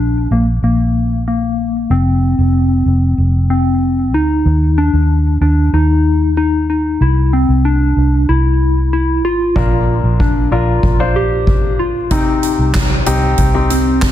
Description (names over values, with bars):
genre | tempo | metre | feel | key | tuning
piano-driven pop | 94 BPM | 4/4 | straight | unclear | A4 = 439 Hz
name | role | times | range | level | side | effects
soft struck synth lead | melody | 0.0-14.1 s | Bb3 to G4 | -16 LUFS | left 2 dB | chorus
vintage muted fingered electric bass | bass | 0.0-14.1 s | F1 to Eb2 | -14 LUFS | equal | none
clear concert grand piano | accompaniment | 9.6-14.1 s | Bb2 to C5 | -19 LUFS | left 4 dB | none
soft-mallet drum kit | drums | 9.6-14.1 s | handclaps, hi-hat, kick drum, snare drum | -16 LUFS | equal | none
room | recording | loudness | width
light reverb, small room ambience | dense, heavily limited modern master | -11 LUFS | side -12 dB against mid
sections
0.0-14.1 A section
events
none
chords
0.0 N.C.; 1.9 F5; 4.5 N.C.; 7.0 C; 9.6 Bb; 12.1 Cm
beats
0.63 1.26 | 1.90 2.54 3.18 3.82 | 4.46 5.09 5.73 6.37 | 7.01 7.65 8.29 8.92 | 9.56 10.20 10.84 11.47 | 12.11 12.75 13.39 14.02